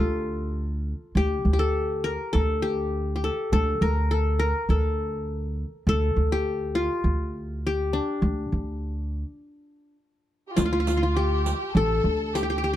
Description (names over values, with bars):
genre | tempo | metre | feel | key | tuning
Arabic maqam ensemble | 102 BPM | 4/4 | straight | D minor | A4 = 439 Hz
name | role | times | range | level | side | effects
qanun | melody | 0.0-12.8 s | D4 to Bb4 | -27 LUFS | left 2 dB | none
upright bass | bass | 0.0-12.7 s | A1 to D2 | -25 LUFS | equal | none
rich studio violin section | second line | 10.5-12.8 s | F4 to A4 | -30 LUFS | right 1 dB | none
riq | percussion | 10.6-12.5 s | none | -32 LUFS | right 7 dB | none
room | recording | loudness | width
little or no reverb | dark, warm production | -23 LUFS | side -12 dB against mid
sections
0.0-10.6 A section; 10.6-12.8 B section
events
break 9.4-10.6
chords
none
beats
0.57 | 1.16 1.75 2.34 2.93 | 3.52 4.10 4.69 5.28 | 5.87 6.46 7.05 7.64 | 8.22 8.81 9.40 9.99 | 10.58 11.16 11.75 12.34